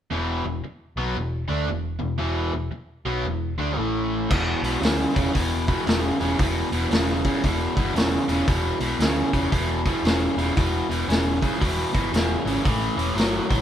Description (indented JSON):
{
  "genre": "blues rock power trio and southern rock",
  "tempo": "115 BPM",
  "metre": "4/4",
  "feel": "swing 64% on 8ths",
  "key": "unclear",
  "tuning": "A4 = 440 Hz",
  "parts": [
    { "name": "raw garage guitar", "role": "riff", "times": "0.1-13.6 s", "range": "E2 to D4", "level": "-24 LUFS", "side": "equal", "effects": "overdrive" },
    { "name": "hollow-body short-scale picked electric bass", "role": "bass", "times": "0.1-13.6 s", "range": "E1 to D2", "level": "-28 LUFS", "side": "equal", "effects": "none" },
    { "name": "vintage drum kit", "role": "drums", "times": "4.3-13.6 s", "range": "crash cymbal, hi-hat, kick drum, snare drum", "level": "-24 LUFS", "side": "equal", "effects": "none" }
  ],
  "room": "moderate stone room reverb, RT60 1.0 s",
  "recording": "band playing live in one room",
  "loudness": "-21 LUFS",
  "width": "side -10 dB against mid",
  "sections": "0.1-4.3 A section; 4.3-13.6 B section",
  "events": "none",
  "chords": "0.1 E5; 3.8 A5; 4.3 E5; 12.6 A7(no3)"
}